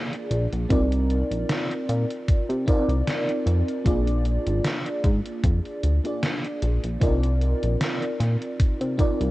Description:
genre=vaporwave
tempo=76 BPM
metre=4/4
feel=swing 55% on 16ths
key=C minor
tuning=A4 = 440 Hz
part: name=FM electric piano with soft pad layer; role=accompaniment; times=0.0-9.3 s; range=Bb3 to D5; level=-27 LUFS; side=equal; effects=tremolo, lush chorus, tape echo
part: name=gated 80s digital drum machine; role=drums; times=0.1-9.3 s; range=hi-hat, snare drum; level=-30 LUFS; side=equal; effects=gated reverb, gated reverb snare
part: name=chorused synth bass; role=bass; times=0.3-9.3 s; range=Ab1 to C3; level=-23 LUFS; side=equal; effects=none
part: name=electronic kick drum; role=drums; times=0.7-9.2 s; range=none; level=-21 LUFS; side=equal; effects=overdrive
room=digital ambience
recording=worn, warbling old tape, cassette tape, warbly pitch drift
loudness=-21 LUFS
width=side -18 dB against mid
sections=0.0-9.3 A section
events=none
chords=0.0 Bb7; 0.7 Cm11; 3.9 Bb7; 7.0 Cm11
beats=| 0.70 1.49 2.28 3.07 | 3.86 4.65 5.44 6.23 | 7.02 7.81 8.60

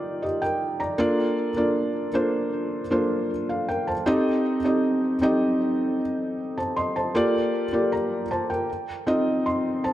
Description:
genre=R&B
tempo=78 BPM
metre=4/4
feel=straight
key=unclear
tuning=A4 = 440 Hz
part: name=felt-muted upright piano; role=solo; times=0.0-9.9 s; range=Bb3 to C6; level=-22 LUFS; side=equal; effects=tape echo
room=moderate lush hall reverb, RT60 2.7 s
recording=dark, warm production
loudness=-22 LUFS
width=side -13 dB against mid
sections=0.0-9.9 A section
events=none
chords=0.0 Ebmaj9; 1.0 Bbmaj7; 4.1 Am7b5; 7.1 Gm9; 8.7 F7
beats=0.22 | 0.99 1.76 2.53 3.30 | 4.07 4.84 5.61 6.37 | 7.14 7.91 8.68 9.45

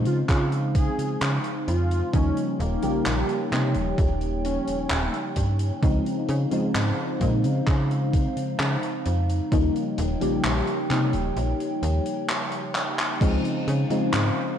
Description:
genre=vaporwave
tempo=65 BPM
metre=4/4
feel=straight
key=Db lydian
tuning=A4 = 440 Hz
part: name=mellow FM electric piano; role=accompaniment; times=0.0-14.6 s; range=Db3 to G4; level=-27 LUFS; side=left 1 dB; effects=analog chorus, tape echo
part: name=warbly tape-like pad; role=sustained chords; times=0.0-14.6 s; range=Eb4 to G5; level=-34 LUFS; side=equal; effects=chorus, built-in reverb
part: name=slap-like FM bass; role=bass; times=0.0-14.3 s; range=Eb1 to Db3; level=-25 LUFS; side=equal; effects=none
part: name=warm velvety synth lead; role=melody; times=0.1-5.1 s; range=Bb3 to Ab4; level=-32 LUFS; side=right 1 dB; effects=chorus, cassette tape, tape echo
part: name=big rock drum kit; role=drums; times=0.1-14.3 s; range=crash cymbal, handclaps, hi-hat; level=-30 LUFS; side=equal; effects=gated reverb
part: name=electronic kick drum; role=drums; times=0.3-13.4 s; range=none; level=-23 LUFS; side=equal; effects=none
room=light reverb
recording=none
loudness=-22 LUFS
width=side -9 dB against mid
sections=0.0-13.2 A section; 13.2-14.6 B section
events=break 11.4-13.2; drum fill 12.8-13.2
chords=0.0 Dbmaj9; 2.1 Eb7; 5.8 Dbmaj9; 9.5 Eb7; 13.2 Dbmaj9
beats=0.29 1.21 | 2.13 3.06 3.98 4.91 | 5.83 6.75 7.67 8.60 | 9.52 10.44 11.37 12.29 | 13.21 14.13

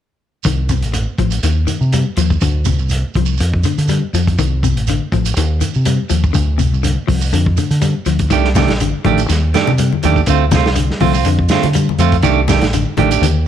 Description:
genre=afrobeat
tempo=122 BPM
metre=4/4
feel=swing 55% on 16ths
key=C dorian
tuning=A4 = 440 Hz
part: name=shekere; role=percussion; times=0.4-13.4 s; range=none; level=-24 LUFS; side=right 5 dB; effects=none
part: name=clean electric guitar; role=arpeggios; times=0.5-13.4 s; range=C3 to G3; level=-20 LUFS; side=left 11 dB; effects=none
part: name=deep dub fingered electric bass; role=bass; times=0.5-13.4 s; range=A1 to D3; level=-15 LUFS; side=equal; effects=none
part: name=vintage drum kit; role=drums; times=0.5-13.4 s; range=hi-hat, kick drum, snare drum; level=-21 LUFS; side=equal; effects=none
part: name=clean electric guitar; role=stabs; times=8.3-13.3 s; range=Eb3 to G4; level=-16 LUFS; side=right 11 dB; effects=none
part: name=congas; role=percussion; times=8.6-13.4 s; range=none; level=-21 LUFS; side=left 8 dB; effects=none
room=small room ambience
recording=1960s-style stereo with parts hard left and right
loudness=-12 LUFS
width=side -10 dB against mid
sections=0.5-13.5 A section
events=none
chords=0.5 Cm6; 2.4 Dm7; 4.4 Cm6; 6.4 Dm7; 8.3 Cm69; 10.3 Dm7; 12.2 Cm69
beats=| 0.45 0.94 1.43 1.93 | 2.42 2.91 3.40 3.89 | 4.38 4.88 5.37 5.86 | 6.35 6.84 7.33 7.83 | 8.32 8.81 9.30 9.79 | 10.28 10.78 11.27 11.76 | 12.25 12.74 13.23

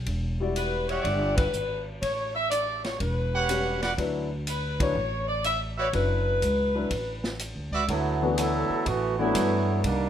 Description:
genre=jazz, big band swing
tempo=123 BPM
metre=4/4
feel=swing 68% on 8ths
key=D major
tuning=A4 = 441 Hz
part: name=upright bass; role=bass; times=0.0-10.1 s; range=E1 to G2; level=-30 LUFS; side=equal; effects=none
part: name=vintage drum kit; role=drums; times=0.1-10.0 s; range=hi-hat, kick drum, ride cymbal, snare drum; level=-34 LUFS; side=equal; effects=none
part: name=warm grand piano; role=accompaniment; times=0.4-9.8 s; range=E3 to D5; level=-30 LUFS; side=left 5 dB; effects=none
part: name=warm saxophone section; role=melody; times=0.6-7.4 s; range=B4 to E5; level=-28 LUFS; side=left 1 dB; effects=none
part: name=brilliant trumpet section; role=stabs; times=0.9-7.8 s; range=F#4 to F#5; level=-30 LUFS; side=right 4 dB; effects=none
part: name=clear trombone section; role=second line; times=7.9-10.1 s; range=Eb3 to A4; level=-26 LUFS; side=right 4 dB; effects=none
room=moderate large studio reverb, RT60 1.4 s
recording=minimal, uncompressed stereo recording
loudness=-24 LUFS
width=side -10 dB against mid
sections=0.0-7.9 A section; 7.9-10.1 B section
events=band accent 1.3, 4.7; trombone section solo 7.9-10.1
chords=0.1 Em9; 2.0 A13; 4.0 D69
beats=| 0.06 0.55 1.04 1.53 | 2.02 2.50 2.99 3.48 | 3.97 4.46 4.95 5.44 | 5.93 6.42 6.91 7.39 | 7.88 8.37 8.86 9.35 | 9.84

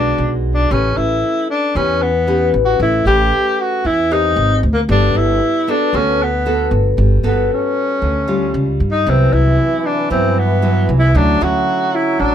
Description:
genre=bossa nova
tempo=115 BPM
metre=4/4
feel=straight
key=unclear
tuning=A4 = 440 Hz
part: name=breathy tenor saxophone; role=melody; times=0.0-12.3 s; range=A#3 to G4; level=-17 LUFS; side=left 1 dB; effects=none
part: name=nylon-string guitar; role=accompaniment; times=0.0-12.3 s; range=G2 to B4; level=-19 LUFS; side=left 2 dB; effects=none
part: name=upright bass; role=bass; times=0.0-12.3 s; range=G1 to G2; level=-16 LUFS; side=equal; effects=none
part: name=bright trombone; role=second line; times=9.1-12.3 s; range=E3 to F#3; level=-24 LUFS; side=right 8 dB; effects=none
room=little or no reverb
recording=close, detailed microphones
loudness=-13 LUFS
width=side -9 dB against mid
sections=0.7-12.3 A section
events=none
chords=0.0 E9 (rootless); 0.7 A9; 4.4 G#maj9; 4.9 Gmaj9; 8.5 C#; 9.1 Cmaj7#11; 11.2 Dmaj9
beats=0.18 | 0.70 1.23 1.75 2.27 | 2.79 3.32 3.84 4.36 | 4.88 5.41 5.93 6.45 | 6.97 7.50 8.02 8.54 | 9.06 9.58 10.11 10.63 | 11.15 11.68 12.20

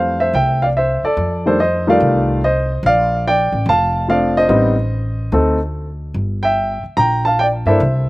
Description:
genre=jazz piano trio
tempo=145 BPM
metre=4/4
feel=swing 67% on 8ths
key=F major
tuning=A4 = 440 Hz
part: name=warm baby grand piano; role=melody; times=0.0-8.1 s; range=Eb3 to Bb5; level=-15 LUFS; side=equal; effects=none
part: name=upright bass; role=bass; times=0.0-8.1 s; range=F1 to G2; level=-19 LUFS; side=equal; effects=none
room=little or no reverb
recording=recorded outdoors, with no room sound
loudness=-14 LUFS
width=side -19 dB against mid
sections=0.0-8.1 A section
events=none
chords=0.0 Fmaj9; 2.8 Bbmaj9; 4.5 Am7b5; 5.3 D5; 6.2 Gm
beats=0.35 0.76 | 1.18 1.59 2.01 2.42 | 2.84 3.25 3.67 4.08 | 4.50 4.91 5.32 5.74 | 6.15 6.57 6.98 7.39 | 7.81

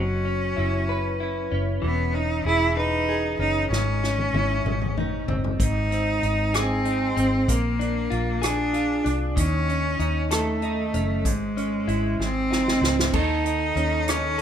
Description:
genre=six-eight pop ballad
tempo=64 BPM (dotted quarters)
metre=6/8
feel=straight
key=C# minor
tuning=A4 = 441 Hz
part: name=bright cello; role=melody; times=0.0-14.4 s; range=G#3 to E4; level=-25 LUFS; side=right 1 dB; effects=none
part: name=direct-recorded clean electric guitar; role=accompaniment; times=0.0-14.4 s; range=G#2 to B4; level=-27 LUFS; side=left 1 dB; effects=double-tracked left and right
part: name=vintage muted fingered electric bass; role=bass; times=0.0-14.4 s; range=E1 to D#2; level=-27 LUFS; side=equal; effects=none
part: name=unplugged drum kit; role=drums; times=3.7-14.4 s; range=crash cymbal, hi-hat, kick drum, rim click, snare drum, toms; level=-28 LUFS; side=equal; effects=none
room=light reverb, small room reverb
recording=rough home demo mix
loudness=-21 LUFS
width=side -9 dB against mid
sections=0.0-13.1 A section; 13.1-14.4 B section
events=drum fill 3.7-5.6, 12.2-13.1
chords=0.0 F#7sus4; 1.8 C#m7/E; 3.7 C#m/G#; 4.7 G#; 7.5 A#7; 9.4 D#m7b5; 11.2 C#m/G#; 12.2 G#; 13.1 C#sus2/D#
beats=0.89 | 1.83 2.77 | 3.71 4.66 | 5.60 6.54 | 7.48 8.42 | 9.37 10.31 | 11.25 12.19 | 13.13 14.08

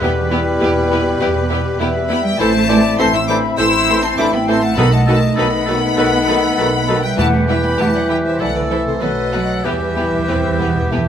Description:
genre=quick classical-period movement for symphony orchestra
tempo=100 BPM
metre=4/4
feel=straight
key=E minor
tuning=A4 = 440 Hz
part: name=rich studio violin section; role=melody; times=0.0-11.1 s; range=B4 to E6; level=-22 LUFS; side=left 3 dB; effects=none
part: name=clear oboe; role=second line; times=0.0-11.1 s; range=G4 to C5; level=-27 LUFS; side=right 1 dB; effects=none
part: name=mellow flute section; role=second line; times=0.0-11.1 s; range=G4 to C6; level=-24 LUFS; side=left 5 dB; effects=none
part: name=rich chamber violin section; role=second line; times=0.0-11.0 s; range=G4 to C5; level=-26 LUFS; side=left 2 dB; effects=none
part: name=warm clarinet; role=second line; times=0.0-11.1 s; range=E4 to E5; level=-24 LUFS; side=left 2 dB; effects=none
part: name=rich chamber viola section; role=accompaniment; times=0.0-11.0 s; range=E3 to E4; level=-24 LUFS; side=right 1 dB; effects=none
part: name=warm bassoon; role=accompaniment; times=0.0-11.1 s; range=D#3 to C4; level=-23 LUFS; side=right 2 dB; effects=none
part: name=dark French horn section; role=sustained chords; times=0.0-11.1 s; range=G3 to G4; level=-23 LUFS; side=left 4 dB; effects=none
part: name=rich studio double bass section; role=bass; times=0.0-11.1 s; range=A1 to E2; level=-23 LUFS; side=right 3 dB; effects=none
part: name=warm symphonic cello section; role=bass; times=0.0-11.1 s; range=B2 to E4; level=-21 LUFS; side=right 3 dB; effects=none
part: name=timpani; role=percussion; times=0.0-0.9, 4.8-11.1 s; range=E2 to B2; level=-22 LUFS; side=equal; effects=none
room=moderate recital hall reverb, RT60 1.4 s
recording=close, detailed microphones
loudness=-13 LUFS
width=side -9 dB against mid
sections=0.0-11.1 A section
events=timpani fill 9.7-11.1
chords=0.0 Em; 2.4 Am; 4.8 B7; 7.2 Em; 8.4 Am/C; 9.0 B7; 9.7 Em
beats=| 0.02 0.61 1.21 1.80 | 2.40 2.99 3.59 4.19 | 4.78 5.38 5.98 6.58 | 7.19 7.80 8.40 9.02 | 9.65 10.28 10.91

